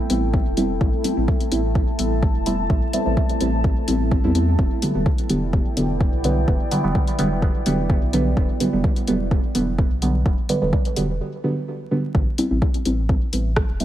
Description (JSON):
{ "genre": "dub techno", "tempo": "127 BPM", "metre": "4/4", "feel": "straight", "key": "A minor", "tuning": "A4 = 442 Hz", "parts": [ { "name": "deep dark ambient pad", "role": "sustained chords", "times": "0.0-11.2 s", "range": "A3 to A5", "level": "-28 LUFS", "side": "equal", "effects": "chorus, built-in reverb, vintage 12-bit sampler grit, sidechain pumping" }, { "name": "deep mellow chord stab", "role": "stabs", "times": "0.1-13.8 s", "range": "D3 to E4", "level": "-23 LUFS", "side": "right 1 dB", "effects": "chorus, phaser, sidechain pumping, dub echo" }, { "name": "warm sub bass", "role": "bass", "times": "0.1-13.8 s", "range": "E1 to E2", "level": "-24 LUFS", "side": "equal", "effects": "sidechain pumping" }, { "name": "deep house drum kit", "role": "drums", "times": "0.1-13.8 s", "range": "hi-hat, rim click", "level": "-28 LUFS", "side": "left 2 dB", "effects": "overdrive" }, { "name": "electronic kick drum", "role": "drums", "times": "0.3-13.7 s", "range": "none", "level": "-20 LUFS", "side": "equal", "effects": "overdrive" } ], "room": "little or no reverb", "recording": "vinyl crackle, faint mains hum", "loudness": "-18 LUFS", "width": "side -12 dB against mid", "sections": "0.0-12.1 A section; 12.1-13.8 A section", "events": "break 11.2-12.1", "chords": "0.0 Am7; 4.6 Em7; 12.1 Am7" }